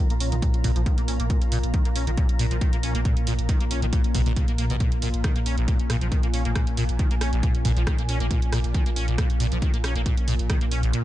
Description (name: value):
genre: driving peak-time techno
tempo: 137 BPM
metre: 4/4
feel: straight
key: unclear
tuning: A4 = 439 Hz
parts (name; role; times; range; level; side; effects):
- acid bass, saw; riff; 0.0-11.0 s; Bb1 to Db4; -30 LUFS; equal; ensemble chorus, sidechain pumping, analog delay
- swarming drone; drone; 0.0-11.0 s; Bb2; -33 LUFS; right 1 dB; built-in reverb, sidechain pumping
- deep dark ambient pad; texture; 0.0-11.0 s; Bb3 to Bb5; -33 LUFS; left 1 dB; chorus, built-in reverb, sidechain pumping
- warm sub bass; bass; 0.1-10.9 s; Bb1; -27 LUFS; equal; sidechain pumping, low-pass filter
- punchy analog drum machine; drums; 0.1-11.0 s; hi-hat, rim click; -34 LUFS; right 4 dB; none
- electronic kick drum; drums; 0.4-10.6 s; none; -24 LUFS; equal; none
room: little or no reverb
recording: echo-heavy mix, nothing above 10.3 kHz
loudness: -21 LUFS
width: side -14 dB against mid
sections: 0.0-11.0 A section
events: none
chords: 0.0 Bb5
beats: 0.42 0.86 | 1.30 1.74 2.17 2.61 | 3.05 3.49 3.93 4.37 | 4.80 5.24 5.68 6.12 | 6.55 6.99 7.43 7.87 | 8.31 8.74 9.18 9.62 | 10.06 10.50 10.94